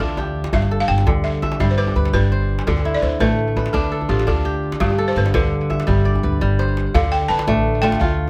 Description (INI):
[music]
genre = west african traditional, West African string and xylophone music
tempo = 112 BPM (dotted quarters)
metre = 12/8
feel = straight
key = D dorian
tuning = A4 = 440 Hz
[part]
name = balafon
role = melody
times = 0.0-8.3 s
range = G4 to A5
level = -26 LUFS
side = equal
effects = none
[part]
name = kora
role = arpeggios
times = 0.0-8.3 s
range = G2 to E5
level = -24 LUFS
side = equal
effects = tape echo
[part]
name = upright bass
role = bass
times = 0.0-8.3 s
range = G1 to D3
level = -22 LUFS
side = equal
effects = none
[part]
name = djembe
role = percussion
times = 0.0-8.3 s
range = none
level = -28 LUFS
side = equal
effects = none
[sound]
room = little or no reverb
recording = close, detailed microphones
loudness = -19 LUFS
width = mono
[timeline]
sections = 0.0-6.9 A section; 6.9-8.3 B section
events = drum fill 6.2-6.9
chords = 0.0 Dm; 0.5 G; 2.7 Dm; 4.8 G; 6.9 Dm